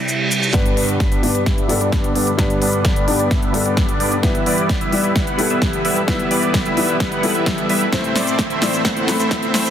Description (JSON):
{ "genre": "EDM, festival progressive house", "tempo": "130 BPM", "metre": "4/4", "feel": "straight", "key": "G major", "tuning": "A4 = 441 Hz", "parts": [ { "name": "felt-muted upright piano", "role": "accompaniment", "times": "0.0-9.7 s", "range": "G2 to B5", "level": "-21 LUFS", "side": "left 3 dB", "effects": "sidechain pumping, digital delay" }, { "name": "lush unison pad", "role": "sustained chords", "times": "0.0-9.7 s", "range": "C3 to A4", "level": "-28 LUFS", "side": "right 1 dB", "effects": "chorus, sidechain pumping" }, { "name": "reverse cymbal and riser", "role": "sound effects", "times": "0.0-9.7 s", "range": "none", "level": "-28 LUFS", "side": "right 3 dB", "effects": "none" }, { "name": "big-room dance drum kit", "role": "drums", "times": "0.1-9.7 s", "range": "cabasa, hi-hat, snare drum", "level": "-23 LUFS", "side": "equal", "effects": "overdrive, small room ambience" }, { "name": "dense compressed supersaw", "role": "riff", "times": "0.5-9.7 s", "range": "G3 to F#5", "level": "-20 LUFS", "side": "right 1 dB", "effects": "sidechain pumping, low-pass filter, digital delay" }, { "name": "electronic kick drum", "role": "drums", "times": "0.5-9.4 s", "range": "none", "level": "-20 LUFS", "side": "equal", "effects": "overdrive, small room ambience" } ], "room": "moderate huge ambient reverb, RT60 4.5 s", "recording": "dense, heavily limited modern master, high-pass filter", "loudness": "-15 LUFS", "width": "side -9 dB against mid", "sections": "0.5-9.7 A section", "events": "reverse cymbal 0.0-0.5; build-up 0.5-9.7; drum fill 0.5-9.7; filter sweep on supersaw synth 0.5-9.7; filter sweep on analog synth pad 0.5-9.7; filter sweep 0.5-9.7", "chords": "0.0 C; 0.5 G; 4.2 Em; 7.9 Am", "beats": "0.08 | 0.54 1.00 1.46 1.93 | 2.39 2.85 3.31 3.77 | 4.23 4.70 5.16 5.62 | 6.08 6.54 7.00 7.46 | 7.92 8.39 8.85 9.31" }